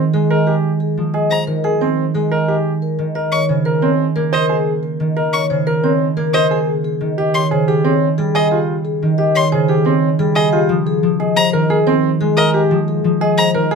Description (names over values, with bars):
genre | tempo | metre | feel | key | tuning
classical, minimalist pattern music | 179 BPM | 6/4 | straight | F minor | A4 = 444 Hz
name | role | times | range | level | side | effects
concert harp | accompaniment | 0.0-13.8 s | Db3 to Bb3 | -17 LUFS | right 2 dB | none
vibraphone with medium mallets | melody | 0.1-13.8 s | G4 to Eb5 | -20 LUFS | left 8 dB | none
clear grand piano | arpeggios | 0.3-13.8 s | C4 to C5 | -20 LUFS | right 6 dB | none
rich violin | arpeggios | 1.3-13.5 s | Eb5 to Db6 | -18 LUFS | left 3 dB | none
room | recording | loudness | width
light reverb | close, detailed microphones | -14 LUFS | side -5 dB against mid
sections
0.0-13.8 A section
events
none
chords
0.0 Fm11; 2.7 Eb7sus4; 6.7 Dbmaj7sus2; 10.7 Fm11